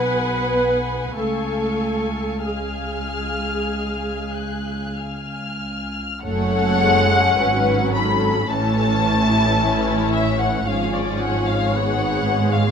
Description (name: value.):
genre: classical, slow romantic movement for string orchestra.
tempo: 46-58 BPM.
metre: 4/4.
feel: rubato.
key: F# minor.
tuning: A4 = 440 Hz.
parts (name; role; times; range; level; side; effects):
muted studio violin section; melody; 0.0-12.7 s; D5 to F#6; -24 LUFS; left 3 dB; none.
muted studio violin section; second line; 0.0-12.7 s; E4 to G#5; -26 LUFS; left 5 dB; none.
muted symphonic viola section; accompaniment; 0.0-12.7 s; E3 to B4; -24 LUFS; equal; none.
muted studio cello section; bass; 0.0-12.7 s; F#2 to B3; -25 LUFS; right 2 dB; none.
muted studio double bass section; bass; 0.0-12.7 s; F#1 to C#2; -26 LUFS; right 2 dB; none.
room: light reverb.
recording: close, detailed microphones.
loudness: -18 LUFS.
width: side -7 dB against mid.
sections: 0.0-6.2 A section; 6.2-12.7 B section.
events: none.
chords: 0.0 F#sus24/B; 1.2 C#; 6.2 F#m; 8.5 A; 10.7 C#7/G#.